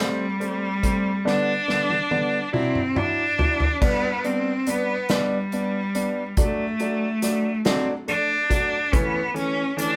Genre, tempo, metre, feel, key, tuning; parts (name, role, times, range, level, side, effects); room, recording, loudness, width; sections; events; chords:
six-eight pop ballad; 47 BPM (dotted quarters); 6/8; straight; G major; A4 = 441 Hz
clear cello; melody; 0.0-10.0 s; G3 to D4; -26 LUFS; equal
warm concert grand piano; accompaniment; 0.0-10.0 s; D3 to E4; -28 LUFS; equal
unplugged drum kit; drums; 0.4-10.0 s; crash cymbal, hi-hat, kick drum, snare drum, toms; -28 LUFS; equal
moderate studio reverb, RT60 0.8 s; band playing live in one room; -23 LUFS; mono
0.0-3.8 A section; 3.8-10.0 B section
drum fill 1.3-3.8
0.0 Am7; 1.3 G/D; 2.5 Dadd9; 3.8 G; 6.4 D/F#; 8.9 A/E